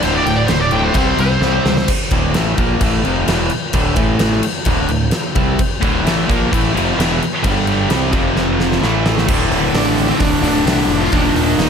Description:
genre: hard rock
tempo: 130 BPM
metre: 4/4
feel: straight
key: D minor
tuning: A4 = 440 Hz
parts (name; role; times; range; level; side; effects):
- high-gain lead guitar; melody; 0.0-1.9, 9.8-11.7 s; C4 to G5; -19 LUFS; equal; distortion, tape echo
- cranked stack guitar; riff; 0.0-11.7 s; D2 to C4; -21 LUFS; right 11 dB; overdrive
- crunchy overdriven guitar; riff; 0.0-11.7 s; D2 to C4; -20 LUFS; left 12 dB; none
- heavy high-gain guitar; riff; 0.0-1.9, 5.8-11.7 s; D2 to C4; -22 LUFS; right 1 dB; distortion
- growling fingered electric bass; bass; 0.0-11.7 s; D1 to C#2; -21 LUFS; equal; overdrive
- huge arena drum kit; drums; 0.0-11.7 s; crash cymbal, hi-hat, kick drum, snare drum; -18 LUFS; equal; none
room: light reverb, small room ambience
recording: none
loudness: -13 LUFS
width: side -7 dB against mid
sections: 0.0-1.9 A section; 1.9-9.3 B section; 9.3-11.7 C section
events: lead electric guitar solo 0.0-1.9; drum fill 1.4-1.9, 8.4-9.3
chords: 0.0 D5; 0.9 C5; 1.9 Dm; 4.0 A5; 4.4 Dm; 7.4 G5; 7.9 C5; 8.1 F5; 8.8 A5; 9.3 D5; 11.1 Eb5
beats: | 0.02 0.48 0.95 1.42 | 1.88 2.35 2.81 3.27 | 3.74 4.20 4.67 5.13 | 5.59 6.05 6.52 6.98 | 7.44 7.90 8.37 8.83 | 9.29 9.75 10.21 10.67 | 11.13 11.60

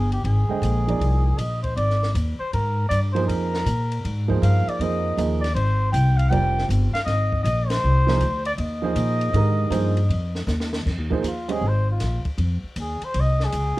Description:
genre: modal jazz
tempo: 158 BPM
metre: 4/4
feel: swing 66% on 8ths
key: F dorian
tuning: A4 = 439 Hz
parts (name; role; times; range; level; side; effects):
- dark trumpet; melody; 0.0-13.8 s; F4 to G5; -26 LUFS; left 1 dB; none
- upright bass; bass; 0.0-13.8 s; F1 to Bb2; -21 LUFS; equal; none
- compact cocktail drum kit; drums; 0.1-13.8 s; crash cymbal, hi-hat, kick drum, ride cymbal, snare drum; -34 LUFS; equal; none
- dark grand piano; accompaniment; 0.5-13.8 s; D3 to G5; -26 LUFS; right 5 dB; cassette tape
room: light reverb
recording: home recording on cassette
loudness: -20 LUFS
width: side -18 dB against mid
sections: 0.0-10.9 A section; 10.9-13.8 B section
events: band accent 7.6; drum fill 10.5-10.9; trumpet solo 10.9-13.8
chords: 0.0 Fm11; 10.9 Bb9sus4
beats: | 0.26 0.64 1.01 1.39 | 1.77 2.15 2.53 2.91 | 3.29 3.67 4.04 4.42 | 4.80 5.18 5.56 5.94 | 6.32 6.70 7.08 7.46 | 7.83 8.21 8.59 8.97 | 9.35 9.73 10.11 10.49 | 10.87 11.25 11.63 12.01 | 12.39 12.77 13.15 13.53

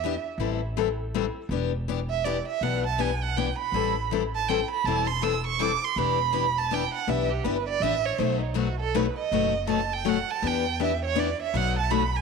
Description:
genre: acoustic string swing (jazz manouche)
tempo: 161 BPM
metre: 3/4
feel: swing 62% on 8ths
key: E minor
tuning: A4 = 440 Hz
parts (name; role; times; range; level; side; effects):
- warm violin; melody; 0.0-12.2 s; D#4 to E6; -27 LUFS; right 10 dB; tape echo
- picked steel-string acoustic guitar; accompaniment; 0.0-12.0 s; B2 to A4; -28 LUFS; left 13 dB; none
- upright bass; bass; 0.0-12.2 s; E1 to E2; -31 LUFS; equal; tube saturation
room: moderate spring reverb, RT60 1.2 s, studio reverb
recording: 1960s-style stereo with parts hard left and right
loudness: -24 LUFS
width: side -5 dB against mid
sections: 0.0-12.2 A section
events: violin solo 0.0-12.2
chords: 0.4 Am7; 1.5 Em7; 3.7 Am9; 6.0 Em7; 8.2 B7; 10.4 Em7; 11.5 B7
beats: 0.00 | 0.38 0.75 1.12 | 1.49 1.87 2.24 | 2.61 2.98 3.36 | 3.73 4.10 4.47 | 4.84 5.22 5.59 | 5.96 6.33 6.71 | 7.08 7.45 7.82 | 8.20 8.57 8.94 | 9.31 9.68 10.06 | 10.43 10.80 11.17 | 11.54 11.92

